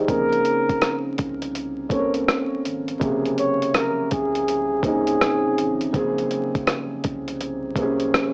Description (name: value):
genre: lo-fi hip hop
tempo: 82 BPM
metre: 4/4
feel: swing 64% on 16ths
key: Bb minor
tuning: A4 = 441 Hz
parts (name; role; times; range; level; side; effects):
- felt-muted upright piano; accompaniment; 0.0-8.3 s; C3 to G5; -23 LUFS; equal; low-pass filter, cassette tape
- warm sub bass; bass; 0.0-8.1 s; Ab1 to C2; -40 LUFS; equal; none
- mellow flugelhorn; melody; 0.1-5.9 s; Ab4 to Db5; -23 LUFS; equal; low-pass filter, cassette tape
- dusty soul sampler-style drum kit; drums; 0.1-8.3 s; hi-hat, kick drum, rim click; -23 LUFS; equal; cassette tape
room: moderate studio reverb, RT60 0.7 s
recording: home recording on cassette, vinyl crackle, small speaker sound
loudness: -20 LUFS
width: side -32 dB against mid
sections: 0.0-8.3 A section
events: none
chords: 0.1 Bbm9